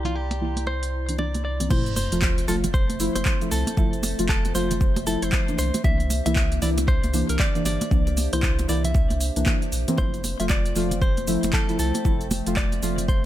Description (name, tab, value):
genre	deep house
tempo	116 BPM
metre	4/4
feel	swing 61% on 16ths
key	F major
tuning	A4 = 440 Hz
part	direct-recorded clean electric guitar	melody	0.0-13.3 s	F4 to E5	-31 LUFS	equal	ping-pong delay
part	warbly tape-like pad	sustained chords	0.0-13.3 s	F3 to C6	-34 LUFS	equal	chorus, built-in reverb, sidechain pumping
part	warm sub bass	bass	0.0-13.2 s	F1 to C2	-27 LUFS	equal	sidechain pumping
part	congas	percussion	0.0-13.1 s	none	-32 LUFS	right 3 dB	sidechain pumping on perc
part	deep mellow chord stab	stabs	0.1-13.0 s	E3 to F4	-27 LUFS	equal	chorus, sidechain pumping
part	deep house drum kit	drums	0.1-13.2 s	crash cymbal, handclaps, hi-hat, shaker	-30 LUFS	right 1 dB	small room ambience
part	electronic kick drum	drums	1.7-13.2 s	none	-22 LUFS	equal	small room ambience
part	sub drop	sound effects	1.7-3.8 s	none	-32 LUFS	equal	none
room	digital ambience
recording	low-pass filter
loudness	-20 LUFS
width	side -13 dB against mid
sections	0.0-1.7 A section; 1.7-13.3 B section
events	drop 1.7-13.3; impact 1.7-3.8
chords	0.0 C9; 1.7 Fmaj7; 5.6 C9; 10.0 Fmaj7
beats	0.15 0.67 1.19 | 1.71 2.22 2.74 3.26 | 3.77 4.29 4.81 5.33 | 5.84 6.36 6.88 7.40 | 7.91 8.43 8.95 9.46 | 9.98 10.50 11.02 11.53 | 12.05 12.57 13.09